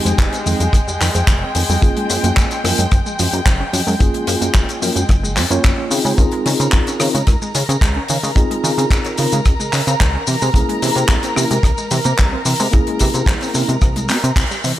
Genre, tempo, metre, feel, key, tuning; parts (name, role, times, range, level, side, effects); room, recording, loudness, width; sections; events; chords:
nu-disco, nu disco; 110 BPM; 4/4; straight; A4 = 439 Hz
mellow tine electric piano; accompaniment; 0.0-13.7 s; Ab3 to Db5; -22 LUFS; equal; medium stereo tremolo, sidechain pumping, tape echo
muted studio violin section; sustained chords; 0.0-14.8 s; Ab3 to Bb5; -24 LUFS; equal; sidechain pumping
analog pluck; arpeggios; 0.1-14.8 s; Eb3 to Db4; -26 LUFS; right 2 dB; chorus, vintage 12-bit sampler grit, sidechain pumping, analog delay
chorused synth bass; bass; 0.1-14.7 s; F1 to Db3; -19 LUFS; equal; tube saturation
damped 70s drum kit; drums; 0.1-14.8 s; handclaps, hi-hat, rim click, shaker; -21 LUFS; left 2 dB
kick drum; drums; 0.2-14.5 s; -15 LUFS; equal
light reverb; -14 LUFS; side -13 dB against mid
0.0-14.8 A section
band accent 14.4
0.0 Fm9; 1.8 Gbmaj9; 5.9 Dbmaj9; 10.3 C7b9b13